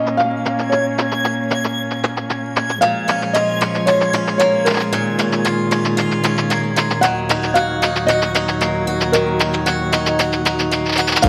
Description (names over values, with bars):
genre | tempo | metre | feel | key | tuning
folktronica | 114 BPM | 4/4 | straight | unclear | A4 = 440 Hz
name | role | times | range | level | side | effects
felt-muted upright piano | melody | 0.0-11.3 s | Bb4 to Gb5 | -22 LUFS | equal | digital delay
muted string quartet | sustained chords | 0.0-11.3 s | Eb2 to Db4 | -24 LUFS | equal | none
backwards swelling texture | texture | 0.5-11.3 s | Ab6 | -30 LUFS | equal | built-in reverb
shaker | drums | 0.1-11.3 s | none | barely audible | none | none
picked swing-style acoustic guitar | arpeggios | 2.8-11.3 s | Bb2 to Gb4 | -23 LUFS | equal | digital delay
round analog bass | bass | 11.2-11.3 s | Bb1 | -23 LUFS | equal | none
electronic kick drum | drums | 11.2-11.3 s | none | -16 LUFS | equal | studio reverb
room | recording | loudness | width
moderate echo chamber reverb, RT60 2.4 s | vinyl crackle | -18 LUFS | mono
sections
0.0-11.2 A section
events
none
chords
0.0 Bbm7; 2.8 Db69/Bb; 7.0 Ebm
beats
0.19 | 0.71 1.24 1.77 2.29 | 2.82 3.35 3.87 4.40 | 4.93 5.45 5.98 6.50 | 7.03 7.56 8.08 8.61 | 9.14 9.66 10.19 10.71 | 11.24